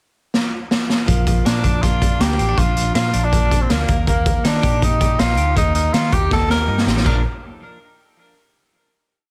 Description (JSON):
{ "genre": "jangly indie pop", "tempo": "160 BPM", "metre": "4/4", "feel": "straight", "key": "Bb major", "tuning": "A4 = 440 Hz", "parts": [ { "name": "raw garage drum kit", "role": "drums", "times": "0.3-7.1 s", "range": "china cymbal, hi-hat, kick drum, snare drum", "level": "-21 LUFS", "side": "equal", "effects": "none" }, { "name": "warm tenor saxophone", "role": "melody", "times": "1.1-7.2 s", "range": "Bb3 to Bb4", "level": "-24 LUFS", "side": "equal", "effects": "none" }, { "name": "twelve-string electric guitar", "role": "arpeggios", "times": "1.1-7.2 s", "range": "F3 to G4", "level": "-28 LUFS", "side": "equal", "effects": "none" }, { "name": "vintage muted fingered electric bass", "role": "bass", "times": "1.1-7.2 s", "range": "A1 to Eb3", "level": "-23 LUFS", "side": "equal", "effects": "none" } ], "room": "small room ambience", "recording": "dense, heavily limited modern master", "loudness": "-18 LUFS", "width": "mono", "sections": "0.0-1.1 pickup bar; 1.1-7.1 verse; 7.1-8.6 final chord", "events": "drum fill 0.3-1.1, 6.3-7.1", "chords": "0.0 N.C.; 1.1 Bb; 3.9 Eb; 7.1 Bb" }